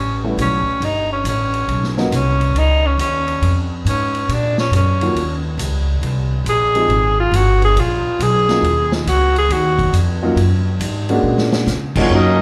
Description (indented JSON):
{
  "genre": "jazz, big band swing",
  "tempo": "138 BPM",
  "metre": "4/4",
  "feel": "swing 66% on 8ths",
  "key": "Eb minor",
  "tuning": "A4 = 441 Hz",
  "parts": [
    { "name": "breathy tenor saxophone", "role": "melody", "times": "0.0-9.9 s", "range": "C#4 to Ab4", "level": "-20 LUFS", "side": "equal", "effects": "none" },
    { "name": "upright bass", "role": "bass", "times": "0.0-12.4 s", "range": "G1 to C#3", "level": "-20 LUFS", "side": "equal", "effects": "none" },
    { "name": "clear grand piano", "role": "accompaniment", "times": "0.2-2.1, 5.0-12.1 s", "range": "Eb3 to G4", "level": "-22 LUFS", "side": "equal", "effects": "none" },
    { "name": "vintage drum kit", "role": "drums", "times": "0.4-12.0 s", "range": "crash cymbal, hi-hat, kick drum, ride cymbal, snare drum", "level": "-28 LUFS", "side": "equal", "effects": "none" },
    { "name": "warm trumpet section", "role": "melody", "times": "12.0-12.4 s", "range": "Ab3 to Eb5", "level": "-18 LUFS", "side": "equal", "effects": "none" },
    { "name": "warm trombone section", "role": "second line", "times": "12.0-12.4 s", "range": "F#3 to Eb4", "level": "-22 LUFS", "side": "equal", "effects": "none" }
  ],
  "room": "moderate recital hall reverb, RT60 1.6 s",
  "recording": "heard from further back in the room",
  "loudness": "-17 LUFS",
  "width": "mono",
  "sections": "0.0-12.1 A section",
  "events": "tenor saxophone solo 0.0-12.1; drum fill 11.2-11.7",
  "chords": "0.0 A9; 1.7 Badd9; 3.4 Fm; 4.3 Bbm; 5.2 Dbsus2; 6.0 C5; 6.9 Fmadd9 (rootless); 7.8 Bb5; 8.6 Ebm9; 11.2 Bb7alt"
}